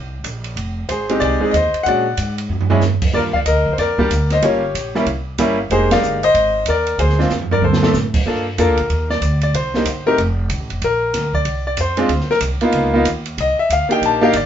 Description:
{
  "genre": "jazz piano trio",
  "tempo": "188 BPM",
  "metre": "4/4",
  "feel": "swing 62% on 8ths",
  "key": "G minor from 8.3 s",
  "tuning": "A4 = 441 Hz",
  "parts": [
    { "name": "upright bass", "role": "bass", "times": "0.0-14.5 s", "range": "F1 to Bb2", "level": "-21 LUFS", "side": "equal", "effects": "none" },
    { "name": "open jazz drum kit", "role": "drums", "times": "0.2-14.4 s", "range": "crash cymbal, hi-hat, kick drum, ride cymbal, snare drum, toms", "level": "-23 LUFS", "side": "right 3 dB", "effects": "none" },
    { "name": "clear concert grand piano", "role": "melody", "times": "0.9-14.5 s", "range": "G3 to A5", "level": "-16 LUFS", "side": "left 1 dB", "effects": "none" }
  ],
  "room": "moderate studio reverb, RT60 0.5 s",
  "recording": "band playing live in one room, nothing above 7.6 kHz",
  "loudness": "-15 LUFS",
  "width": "side -9 dB against mid",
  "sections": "0.0-8.3 A section; 8.3-14.5 B section",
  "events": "drum fill 2.5-2.8, 7.3-7.9; band accent 5.9; grand piano solo 8.3-14.5",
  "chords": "0.0 Bbsus2; 0.6 Fm7; 1.9 Bb7alt; 3.1 Ebmaj9; 4.4 Gm7b5; 5.1 C7b9; 5.7 Fm11; 7.0 Dm7b5; 7.6 D5; 8.3 Gm7; 9.5 Cm7; 10.2 F; 10.8 Bbadd9; 12.1 C7sus2; 12.7 C#13; 13.4 Cm9",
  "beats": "0.25 | 0.57 0.89 1.21 1.53 | 1.86 2.18 2.50 2.82 | 3.14 3.46 3.78 4.10 | 4.42 4.74 5.06 5.38 | 5.70 6.02 6.34 6.66 | 6.98 7.30 7.62 7.94 | 8.26 8.58 8.90 9.22 | 9.54 9.86 10.18 10.50 | 10.82 11.14 11.46 11.78 | 12.10 12.42 12.74 13.06 | 13.38 13.70 14.02 14.34"
}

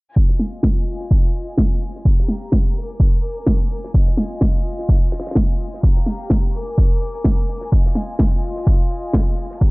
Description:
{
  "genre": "piano house",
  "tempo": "127 BPM",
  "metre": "4/4",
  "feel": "swing 58% on 16ths",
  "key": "F dorian",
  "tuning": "A4 = 440 Hz",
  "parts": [
    { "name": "warm chamber string section", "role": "sustained chords", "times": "0.2-9.7 s", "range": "F4 to D6", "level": "-31 LUFS", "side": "left 2 dB", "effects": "sidechain pumping, low-pass filter" },
    { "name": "damped 70s drum kit", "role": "drums", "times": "0.2-9.7 s", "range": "hi-hat, snare drum", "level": "-34 LUFS", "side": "equal", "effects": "none" },
    { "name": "electronic kick drum", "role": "drums", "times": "0.2-9.7 s", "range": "none", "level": "-16 LUFS", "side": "equal", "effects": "none" },
    { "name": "electronic snare drum and rim click", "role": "drums", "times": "0.4-9.2 s", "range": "none", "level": "-22 LUFS", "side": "equal", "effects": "none" }
  ],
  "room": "small room reverb",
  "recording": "dry, gritty hardware recording, cassette tape, low-pass filter",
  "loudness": "-16 LUFS",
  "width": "side -27 dB against mid",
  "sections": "0.2-9.7 A section",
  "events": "filter sweep on string section 0.2-9.7; filter sweep 0.2-9.7",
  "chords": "0.2 Fm7; 2.1 Gm7; 2.8 Bb7; 3.9 Fm7; 5.8 Gm7; 6.5 Bb7; 7.7 Fm7",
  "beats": "| 0.16 0.64 1.11 1.58 | 2.05 2.53 3.00 3.47 | 3.94 4.42 4.89 5.36 | 5.83 6.31 6.78 7.25 | 7.72 8.20 8.67 9.14 | 9.61"
}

